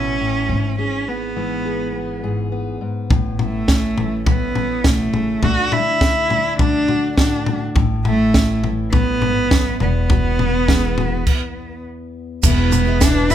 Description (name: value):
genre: indie folk with a building arrangement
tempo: 103 BPM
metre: 4/4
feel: straight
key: A major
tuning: A4 = 440 Hz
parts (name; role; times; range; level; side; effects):
- warm cello; melody; 0.0-13.3 s; A3 to F#4; -20 LUFS; right 1 dB; none
- fingerpicked steel-string acoustic guitar; accompaniment; 0.0-13.3 s; E2 to G#4; -25 LUFS; left 2 dB; none
- upright bass; bass; 0.0-13.3 s; E1 to D2; -24 LUFS; equal; none
- compact cocktail drum kit; drums; 3.1-13.3 s; crash cymbal, kick drum, snare drum, toms; -18 LUFS; equal; none
- picked twelve-string acoustic guitar; accompaniment; 12.4-13.3 s; E2 to E4; -24 LUFS; left 6 dB; none
- tube shaker; percussion; 12.4-13.3 s; none; -26 LUFS; right 10 dB; none
room: light reverb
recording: band playing live in one room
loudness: -16 LUFS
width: side -10 dB against mid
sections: 0.0-12.4 A section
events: stop 11.3-12.4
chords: 0.5 E/G#; 3.1 A; 5.4 D; 7.8 A; 9.8 Eadd9; 12.4 E